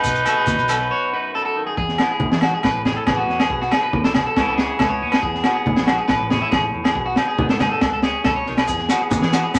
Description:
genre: highlife guitar band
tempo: 139 BPM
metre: 4/4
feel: straight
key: E major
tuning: A4 = 440 Hz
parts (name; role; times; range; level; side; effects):
- raspy tenor saxophone; melody; 0.0-1.3 s; D#4; -24 LUFS; equal; none
- dark trumpet; second line; 0.0-1.3 s; B4; -26 LUFS; equal; none
- clean electric guitar; accompaniment; 0.0-9.6 s; E2 to F#4; -29 LUFS; equal; none
- electric guitar at the edge of break-up; arpeggios; 0.0-9.6 s; B3 to C#5; -26 LUFS; equal; none
- hollow-body short-scale fingered electric bass; bass; 0.0-9.6 s; A1 to E3; -31 LUFS; equal; none
- crunchy breakbeat drum kit; drums; 0.0-9.6 s; hi-hat, kick drum, rim click, snare drum; -24 LUFS; equal; none
- congas; percussion; 0.0-9.6 s; none; -28 LUFS; equal; none
- shekere; percussion; 0.0-0.8, 8.7-9.6 s; none; -33 LUFS; equal; none
- agogo bells; percussion; 0.3-9.6 s; none; -26 LUFS; equal; none
room: wet small room reverb, RT60 0.5 s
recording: none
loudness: -19 LUFS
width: mono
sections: 0.0-1.8 A section; 1.8-9.6 B section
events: break 0.9-1.8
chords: 0.0 B; 1.8 E; 2.6 Aadd9; 3.5 B; 4.4 Aadd9/C#; 5.2 E; 6.1 Aadd9; 7.0 B; 7.8 Aadd9/C#; 8.7 E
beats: | 0.04 0.47 0.91 1.34 | 1.77 2.20 2.63 3.06 | 3.50 3.93 4.36 4.79 | 5.22 5.66 6.09 6.52 | 6.95 7.38 7.82 8.25 | 8.68 9.12 9.55

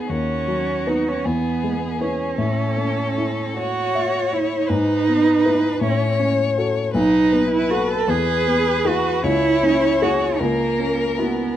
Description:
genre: classical, slow romantic movement for piano trio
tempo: 52 BPM (dotted quarters)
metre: 6/8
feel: rubato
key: E major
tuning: A4 = 440 Hz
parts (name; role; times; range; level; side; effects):
- rich violin; melody; 0.0-11.6 s; F#4 to C#5; -24 LUFS; left 5 dB; none
- rich cello; second line; 0.0-11.6 s; A#3 to A4; -21 LUFS; right 4 dB; none
- dark baby grand piano; accompaniment; 0.0-11.6 s; B1 to E5; -22 LUFS; left 2 dB; none
room: light reverb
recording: worn, warbling old tape, cassette tape, warbly pitch drift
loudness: -17 LUFS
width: side -11 dB against mid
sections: 0.0-11.6 A section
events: none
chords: 0.1 B/D#; 1.3 E; 2.4 A; 4.7 E/G#; 5.8 A6; 6.9 B7; 8.1 E; 9.2 C#m; 10.4 F#7/C#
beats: | 0.09 1.26 | 2.39 3.58 | 4.70 5.82 | 6.95 8.08 | 9.25 10.40

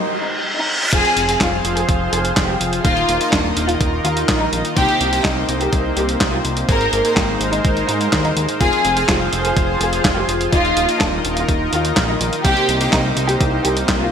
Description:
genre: italo disco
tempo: 125 BPM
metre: 4/4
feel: straight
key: unclear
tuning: A4 = 440 Hz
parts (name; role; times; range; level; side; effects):
- dark symphonic violin section; melody; 0.0-14.1 s; D4 to Bb4; -20 LUFS; equal; ping-pong delay
- reverse cymbal; sound effects; 0.0-0.9 s; none; -20 LUFS; equal; none
- lush unison pad; sustained chords; 1.4-14.1 s; Eb3 to C5; -23 LUFS; right 1 dB; chorus
- chorused polysynth; stabs; 0.9-14.1 s; Ab2 to F5; -24 LUFS; left 2 dB; none
- fat analog bass; bass; 0.9-14.1 s; Eb1 to Ab2; -23 LUFS; equal; none
- dusty soul sampler-style drum kit; drums; 0.9-14.0 s; crash cymbal, handclaps, hi-hat, snare drum; -21 LUFS; equal; gated reverb
- electronic kick drum; drums; 0.9-14.0 s; none; -20 LUFS; equal; none
room: moderate lush hall reverb, RT60 1.8 s, digital ambience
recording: bright 1980s-style digital production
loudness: -15 LUFS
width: side -7 dB against mid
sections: 0.9-14.1 A section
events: break 0.0-0.9; reverse cymbal 0.0-0.9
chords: 0.0 N.C.; 0.9 Fm; 2.8 Ebsus2; 4.8 Cm7; 6.7 Abadd9; 8.6 Fm; 10.5 Ebsus2; 12.4 Cm7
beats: 0.45 | 0.93 1.41 1.89 2.37 | 2.85 3.33 3.81 4.29 | 4.77 5.25 5.73 6.21 | 6.69 7.17 7.65 8.13 | 8.61 9.09 9.57 10.05 | 10.53 11.01 11.49 11.97 | 12.45 12.93 13.41 13.89

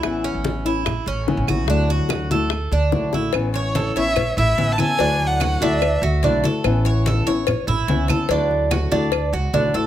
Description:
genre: latin, Cuban son and guajira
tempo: 145 BPM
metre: 4/4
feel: straight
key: A major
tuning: A4 = 439 Hz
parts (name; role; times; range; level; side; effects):
- flamenco guitar; accompaniment; 0.0-9.9 s; D3 to F#4; -24 LUFS; left 4 dB; none
- Cuban tres; arpeggios; 0.0-9.9 s; C#4 to C#5; -24 LUFS; right 5 dB; none
- upright bass; bass; 0.0-9.9 s; A1 to D2; -22 LUFS; right 1 dB; none
- bongos and cowbell; percussion; 0.0-9.9 s; none; -27 LUFS; left 10 dB; none
- claves; percussion; 0.0-9.3 s; none; -32 LUFS; right 9 dB; none
- congas; percussion; 0.0-9.7 s; none; -26 LUFS; left 1 dB; none
- warm violin; melody; 3.5-6.0 s; C#5 to A5; -22 LUFS; equal; plate reverb
room: light reverb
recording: close, detailed microphones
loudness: -17 LUFS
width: side -11 dB against mid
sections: 0.0-3.3 A section; 3.3-9.9 B section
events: drum fill 3.1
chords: 0.0 Aadd9; 1.7 Dadd9; 3.3 Aadd9; 5.0 Dadd9; 6.7 Aadd9; 8.3 Dadd9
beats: | 0.03 0.45 0.86 1.27 | 1.69 2.10 2.51 2.93 | 3.34 3.75 4.17 4.58 | 5.00 5.41 5.82 6.24 | 6.65 7.06 7.48 7.89 | 8.30 8.71 9.13 9.54

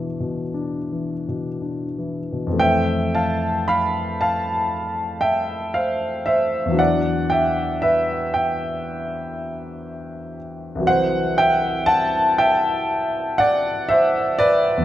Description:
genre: classical, impressionist solo piano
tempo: 42-61 BPM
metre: 4/4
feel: rubato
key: unclear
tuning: A4 = 440 Hz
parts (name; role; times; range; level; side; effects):
- clear grand piano; solo; 0.0-14.8 s; C2 to B5; -19 LUFS; equal; none
room: moderate recital hall reverb, RT60 1.5 s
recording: none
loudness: -18 LUFS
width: side -12 dB against mid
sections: 0.0-2.6 A section; 2.6-14.8 B section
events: none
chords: 0.0 E5; 2.6 Fmaj7#11; 6.8 Em9; 10.9 Cmaj7#11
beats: 1.25 | 2.60 3.67 4.70 5.74 | 6.79 7.84 8.86 9.89 | 10.89 11.88 12.89 13.89

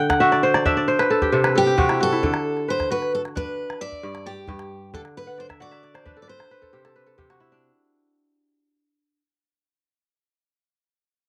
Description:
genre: west african traditional, West African string and xylophone music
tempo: 89 BPM (dotted quarters)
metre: 12/8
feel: straight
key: D mixolydian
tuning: A4 = 440 Hz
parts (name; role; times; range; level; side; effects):
- kora; arpeggios; 0.0-9.2 s; G2 to G5; -22 LUFS; equal; cassette tape
- calabash; percussion; 0.1-7.5 s; none; -28 LUFS; equal; none
- picked steel-string acoustic guitar; melody; 1.6-7.2 s; G4 to D5; -27 LUFS; equal; none
room: light reverb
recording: home recording on cassette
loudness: -21 LUFS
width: mono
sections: 0.0-7.6 A section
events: fade-out 0.0-7.6; kora fill 0.0-2.2, 5.3-7.6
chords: 0.0 D; 0.9 N.C.; 2.2 D; 3.6 G5; 4.9 D; 6.3 N.C.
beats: 0.20 0.88 1.55 | 2.23 2.90 3.58 4.25 | 4.93 5.61 6.28 6.96

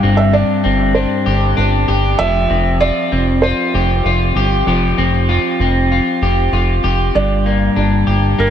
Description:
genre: dream pop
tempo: 97 BPM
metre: 4/4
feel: straight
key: unclear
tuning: A4 = 442 Hz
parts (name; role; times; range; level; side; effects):
- felt-muted upright piano; melody; 0.0-8.5 s; Bb4 to F5; -20 LUFS; right 4 dB; tape echo
- electric guitar at the edge of break-up; arpeggios; 0.0-8.5 s; G2 to G4; -15 LUFS; left 2 dB; wide subtle chorus, tape echo
- fat analog bass; bass; 0.0-8.5 s; F1 to G1; -16 LUFS; right 1 dB; none
room: moderate huge ambient reverb, RT60 4.0 s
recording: none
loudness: -12 LUFS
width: side -9 dB against mid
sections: 0.0-7.1 A section; 7.1-8.5 B section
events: none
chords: 0.0 Csus2; 2.2 Fsus2; 7.1 Gm7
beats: 0.34 0.96 1.58 | 2.20 2.82 3.44 4.06 | 4.67 5.29 5.91 6.53 | 7.15 7.77 8.39

